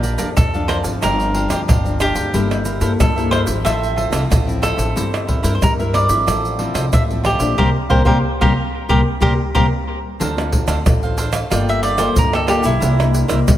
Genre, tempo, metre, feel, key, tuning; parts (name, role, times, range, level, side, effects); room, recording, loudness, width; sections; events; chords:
samba and choro; 92 BPM; 4/4; straight; D minor from 10.2 s; A4 = 443 Hz
cavaquinho; melody; 0.0-13.6 s; E4 to E5; -21 LUFS; equal; analog delay
cavaquinho; accompaniment; 0.0-13.4 s; D4 to A5; -26 LUFS; right 4 dB
nylon-string guitar; accompaniment; 0.0-13.6 s; F2 to Bb4; -23 LUFS; left 4 dB
upright bass; bass; 0.0-13.6 s; G1 to G2; -21 LUFS; equal
tube shaker, pandeiro, surdo and tamborim; percussion; 0.0-13.6 s; -19 LUFS; equal
moderate plate reverb, RT60 2.6 s; dreamy mix soaked in reverb; -15 LUFS; side -12 dB against mid
0.0-10.2 A section; 10.2-13.6 B section
band accent 7.6-10.2; drum fill 9.6-10.2; cavaquinho solo 10.2-13.6
0.0 Bbmaj7; 1.0 G7sus4; 2.3 C6/G; 3.7 Fmaj7/A; 5.0 C7/G; 6.3 Fmaj7/A; 7.6 C7sus4; 10.2 Dm7; 11.5 Gm9; 12.8 C9